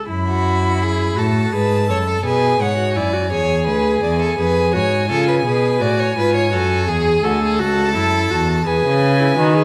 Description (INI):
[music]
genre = classical, baroque-style fugue for string quartet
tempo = 56 BPM (dotted quarters)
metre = 12/8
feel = straight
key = F# minor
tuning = A4 = 439 Hz
[part]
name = clear viola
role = accompaniment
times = 0.0-9.6 s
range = E4 to A4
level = -23 LUFS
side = equal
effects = none
[part]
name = rich violin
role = melody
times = 0.1-9.6 s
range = F#5 to B5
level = -26 LUFS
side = equal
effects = none
[part]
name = rich cello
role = bass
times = 0.1-9.6 s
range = C#2 to D#3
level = -21 LUFS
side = equal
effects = none
[part]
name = clear violin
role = second line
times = 0.3-9.6 s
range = F#4 to D5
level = -23 LUFS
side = equal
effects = none
[sound]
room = wet recital hall reverb, RT60 1.4 s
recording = vinyl crackle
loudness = -17 LUFS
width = mono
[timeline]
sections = 0.1-9.6 A section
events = none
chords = 0.1 F#m; 2.2 G#dim; 4.4 C#7/E#; 6.5 F#m; 8.7 C#m/E